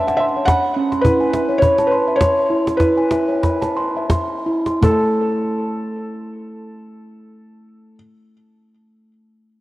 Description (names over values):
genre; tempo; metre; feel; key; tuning
world meditative, meditative tuned percussion; 80-106 BPM; 3/4; swing 55% on 16ths; unclear; A4 = 440 Hz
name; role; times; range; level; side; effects
felt-muted upright piano; melody; 0.0-8.0 s; A4 to F#5; -19 LUFS; equal; tape echo
steel tongue drum; arpeggios; 0.0-8.1 s; A3 to C6; -20 LUFS; equal; tape echo
cajon; percussion; 0.1-5.2 s; none; -19 LUFS; equal; none
room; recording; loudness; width
moderate lush hall reverb, RT60 2.8 s; home recording on cassette; -15 LUFS; side -17 dB against mid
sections
0.0-4.8 A section; 4.8-9.3 B section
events
slowing down 1.1-4.8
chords
0.0 D; 1.1 E; 4.8 N.C.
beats
0.49 | 1.05 1.62 2.20 | 2.80 3.43 4.10 | 4.82 5.57 6.33 | 7.08 7.83